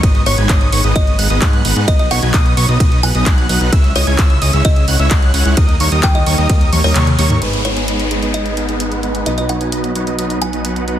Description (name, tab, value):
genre	EDM, festival progressive house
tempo	130 BPM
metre	4/4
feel	straight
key	G# minor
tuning	A4 = 438 Hz
part	kalimba	melody	0.0-10.9 s	C#5 to G#5	-24 LUFS	equal	tape echo
part	wide unison lead	arpeggios	0.0-7.4 s	C#6 to G#6	-22 LUFS	equal	sidechain pumping, tape echo
part	big supersaw lead	riff	0.0-11.0 s	F#3 to G#5	-20 LUFS	right 1 dB	sidechain pumping, low-pass filter, tape echo
part	fat analog bass	bass	0.0-11.0 s	G#1 to G#2	-17 LUFS	equal	sidechain pumping
part	electronic kick drum	drums	0.0-6.6 s	none	-13 LUFS	equal	overdrive
part	house drum kit	drums	0.0-11.0 s	handclaps, hi-hat, ride cymbal, toms	-21 LUFS	right 1 dB	overdrive
part	fingerpicked old ladder-braced acoustic guitar	accompaniment	7.4-11.0 s	G#2 to B4	-25 LUFS	right 2 dB	sidechain pumping, tape echo
part	downlifter	sound effects	7.4-11.0 s	none	-25 LUFS	left 2 dB	none
room	little or no reverb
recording	dense, heavily limited modern master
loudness	-12 LUFS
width	side -11 dB against mid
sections	0.0-7.4 A section; 7.4-11.0 B section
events	drop 0.0-7.4; drum fill 6.7-7.4; kick drops out 7.0-7.4; band accent 7.0; filter sweep on supersaw synth 7.4-11.0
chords	0.0 G#m; 1.9 B; 3.7 C#m; 5.6 D#; 7.4 G#m; 9.3 B